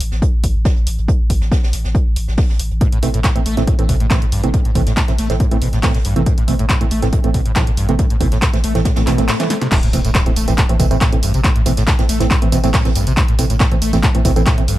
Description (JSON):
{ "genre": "driving peak-time techno", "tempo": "139 BPM", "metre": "4/4", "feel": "straight", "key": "A minor", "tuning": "A4 = 440 Hz", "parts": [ { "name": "saturated sub bass", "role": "bass", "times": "0.0-14.8 s", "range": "A1", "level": "-20 LUFS", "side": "equal", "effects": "overdrive, sidechain pumping, low-pass filter" }, { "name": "jazz brush drum kit", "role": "drums", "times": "0.0-14.8 s", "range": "hi-hat, snare drum", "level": "-31 LUFS", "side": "right 1 dB", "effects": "high-pass filter on hats, high-pass filter on snare, high-pass filter on room" }, { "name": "punchy analog drum machine", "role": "drums", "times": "0.0-14.8 s", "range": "crash cymbal, handclaps, hi-hat, snare drum, tambourine", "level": "-22 LUFS", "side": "equal", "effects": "sidechain pumping on hats, sidechain pumping on cymbals, sidechain pumping on perc" }, { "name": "electronic kick drum", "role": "drums", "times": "0.2-14.6 s", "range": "none", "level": "-16 LUFS", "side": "equal", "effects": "none" }, { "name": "screaming distorted acid line", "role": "riff", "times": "2.8-14.8 s", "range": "G2 to A3", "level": "-20 LUFS", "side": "equal", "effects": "distortion, ensemble chorus, sidechain pumping, digital delay" }, { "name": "wavetable chord stab", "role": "stabs", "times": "3.0-14.6 s", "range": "E3 to C4", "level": "-21 LUFS", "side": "right 4 dB", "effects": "cassette tape, sidechain pumping, digital delay" }, { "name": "swell and impact", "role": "sound effects", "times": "9.0-11.4 s", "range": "none", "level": "-27 LUFS", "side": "left 2 dB", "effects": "none" } ], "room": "light reverb", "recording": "dark, warm production", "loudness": "-13 LUFS", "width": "side -15 dB against mid", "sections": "0.0-9.7 A section; 9.7-14.8 B section", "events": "swell 9.0-9.7; drum fill 9.4-9.7; drop 9.7-14.8; impact 9.7-11.4", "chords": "0.0 Am", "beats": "0.22 0.65 | 1.08 1.52 1.95 2.38 | 2.81 3.24 3.67 4.11 | 4.54 4.97 5.40 5.83 | 6.26 6.70 7.13 7.56 | 7.99 8.42 8.85 9.29 | 9.72 10.15 10.58 11.01 | 11.44 11.88 12.31 12.74 | 13.17 13.60 14.03 14.47" }